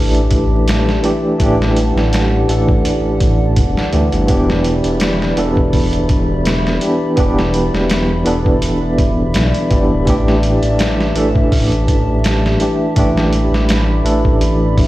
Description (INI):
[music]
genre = trip hop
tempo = 83 BPM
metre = 4/4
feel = swing 54% on 16ths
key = unclear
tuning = A4 = 440 Hz
[part]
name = mellow tine electric piano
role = accompaniment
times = 0.0-14.9 s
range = E3 to A4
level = -16 LUFS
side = equal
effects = medium tremolo, tape echo
[part]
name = warbly tape-like pad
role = sustained chords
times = 0.0-14.9 s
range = G4 to B5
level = -23 LUFS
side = left 2 dB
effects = chorus, built-in reverb
[part]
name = dark detuned saw bass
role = bass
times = 0.0-14.9 s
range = D1 to D2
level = -17 LUFS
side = equal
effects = none
[part]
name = trip hop sampler-style drum kit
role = drums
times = 0.1-14.9 s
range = hi-hat, kick drum, snare drum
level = -17 LUFS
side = equal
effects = none
[sound]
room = light reverb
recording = played on a big sound system in a bare room, stone room reverb, vinyl crackle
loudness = -12 LUFS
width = side -16 dB against mid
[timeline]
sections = 0.0-14.9 A section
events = none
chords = 0.0 A7sus4; 4.3 Em7; 10.1 A7sus4